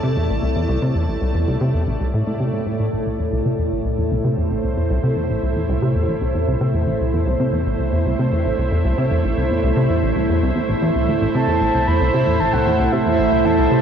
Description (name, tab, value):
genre	ambient, sequencer-driven space music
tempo	114 BPM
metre	4/4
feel	straight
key	A minor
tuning	A4 = 442 Hz
part	evolving wavetable pad	sustained chords	0.0-13.8 s	A2 to A5	-20 LUFS	right 2 dB	chorus, built-in reverb, shimmer reverb
part	plucky analog bass	riff	0.0-13.8 s	A1 to C3	-19 LUFS	equal	lush chorus, cassette tape, ping-pong delay
part	pulsing gated texture	texture	2.9-13.8 s	A3 to A4	-35 LUFS	left 2 dB	none
part	breathy flute-like synth lead	melody	11.3-13.8 s	E5 to B5	-21 LUFS	equal	lush chorus, shimmer reverb, ping-pong delay
room	wet huge ambient reverb, RT60 8.2 s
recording	worn, warbling old tape, cassette tape, warbly pitch drift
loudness	-17 LUFS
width	side -8 dB against mid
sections	0.0-2.9 A section; 2.9-13.8 B section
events	none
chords	0.0 Am